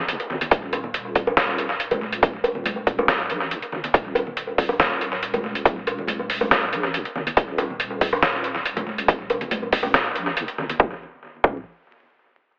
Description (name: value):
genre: deep dubstep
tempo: 140 BPM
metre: 4/4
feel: half-time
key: Eb minor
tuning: A4 = 439 Hz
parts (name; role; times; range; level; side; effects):
- deep soft wobble bass; bass; 0.0-11.6 s; Eb1 to Bb1; -33 LUFS; equal; chorus
- downlifter; sound effects; 0.0-0.5 s; none; -38 LUFS; equal; none
- trip hop sampler-style drum kit; drums; 0.1-10.8 s; hi-hat, snare drum; -23 LUFS; equal; tape echo
- congas and bongos; percussion; 0.3-10.8 s; none; -28 LUFS; equal; tape echo
- electronic kick drum; drums; 0.5-11.5 s; none; -18 LUFS; equal; overdrive
room: wet spring reverb, RT60 1.7 s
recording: echo-heavy mix, vinyl crackle, telephone sound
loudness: -20 LUFS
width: side -28 dB against mid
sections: 0.0-10.8 A section; 10.8-12.5 B section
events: none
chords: none